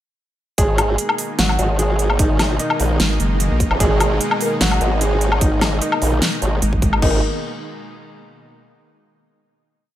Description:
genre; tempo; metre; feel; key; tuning
heavy wobble dubstep; 149 BPM; 4/4; half-time; G# minor; A4 = 438 Hz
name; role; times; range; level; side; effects
clear grand piano; melody; 0.6-7.2 s; D#3 to G#4; -24 LUFS; equal; digital delay
supersaw pad; sustained chords; 0.6-7.2 s; B2 to D#4; -26 LUFS; equal; sidechain pumping
formant-sweep wobble bass; bass; 0.6-7.2 s; F#1 to A#1; -19 LUFS; equal; chorus, overdrive
big-room dance drum kit; drums; 0.6-7.1 s; crash cymbal, hi-hat, snare drum, woodblock; -21 LUFS; left 1 dB; small room ambience
electronic kick drum; drums; 0.6-7.1 s; none; -19 LUFS; equal; small room ambience
vowel-sweep wobble bass; bass; 1.4-7.0 s; F#1 to A#1; -19 LUFS; equal; chorus, overdrive
mellow brass ensemble; stabs; 4.4-7.2 s; B3 to A#4; -26 LUFS; left 1 dB; digital delay
room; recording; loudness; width
light reverb; none; -15 LUFS; side -12 dB against mid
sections
0.6-7.0 drop; 7.0-8.6 final chord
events
drop 0.6-7.0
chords
0.6 G#madd9

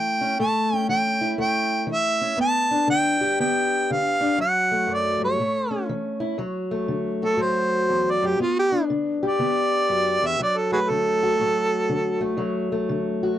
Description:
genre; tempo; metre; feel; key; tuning
acoustic country blues, solo or duo; 120 BPM; 4/4; swing 64% on 8ths; D major; A4 = 440 Hz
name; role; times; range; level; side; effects
mellow harmonica; melody; 0.0-12.4 s; F4 to A5; -21 LUFS; right 2 dB; none
fingerpicked steel-string acoustic guitar; accompaniment; 0.0-13.4 s; D2 to G4; -24 LUFS; left 2 dB; none
room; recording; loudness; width
moderate booth ambience, RT60 0.3 s; dry, close 1970s-style studio recording; -20 LUFS; side -11 dB against mid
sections
0.0-6.4 A section; 6.4-13.4 B section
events
harmonica solo 6.4-13.4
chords
0.0 A; 2.4 G; 4.4 D; 5.4 A; 6.4 D; 8.4 G; 10.4 D

